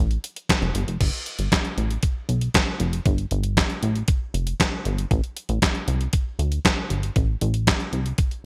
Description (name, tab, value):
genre	early-eighties boogie funk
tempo	117 BPM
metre	4/4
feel	straight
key	unclear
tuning	A4 = 441 Hz
part	plucky analog bass	bass	0.0-8.1 s	F1 to D2	-25 LUFS	equal	none
part	detuned 8-bit digital drum machine	drums	0.1-8.4 s	crash cymbal, handclaps, hi-hat, kick drum, snare drum	-24 LUFS	equal	gated reverb
room	light reverb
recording	bright 1980s-style digital production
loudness	-23 LUFS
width	mono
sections	0.0-1.0 A section; 1.0-8.4 B section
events	none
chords	none